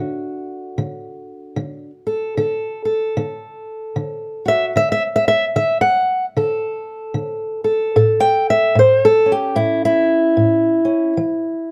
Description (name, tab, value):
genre	acoustic country blues, solo or duo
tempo	75 BPM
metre	4/4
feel	swing 61% on 8ths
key	unclear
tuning	A4 = 439 Hz
part	fingerpicked old ladder-braced acoustic guitar	solo	0.0-11.7 s	A2 to G5	-18 LUFS	equal	none
room	light reverb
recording	none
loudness	-17 LUFS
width	mono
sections	0.0-11.7 A section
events	steel-string acoustic guitar solo 0.0-11.7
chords	0.0 D; 8.0 A; 11.2 E5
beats	0.77 | 1.56 2.36 3.16 3.95 | 4.75 5.55 6.35 7.15 | 7.96 8.76 9.56 10.37 | 11.17